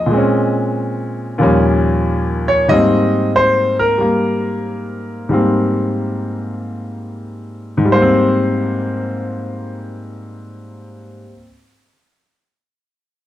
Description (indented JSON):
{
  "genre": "solo jazz",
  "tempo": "92 BPM",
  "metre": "4/4",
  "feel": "swing 67% on 8ths",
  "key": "Ab major",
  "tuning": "A4 = 440 Hz",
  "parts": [
    { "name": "clear grand piano", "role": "solo", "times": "0.0-11.5 s", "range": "Eb2 to Eb5", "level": "-15 LUFS", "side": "equal", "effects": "none" }
  ],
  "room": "light reverb",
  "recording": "dark, warm production",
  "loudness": "-14 LUFS",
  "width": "side -13 dB against mid",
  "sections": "0.0-7.9 A section; 7.9-10.5 B section",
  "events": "none",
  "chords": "0.1 Bbm9; 1.4 Eb9; 2.7 Abmaj9"
}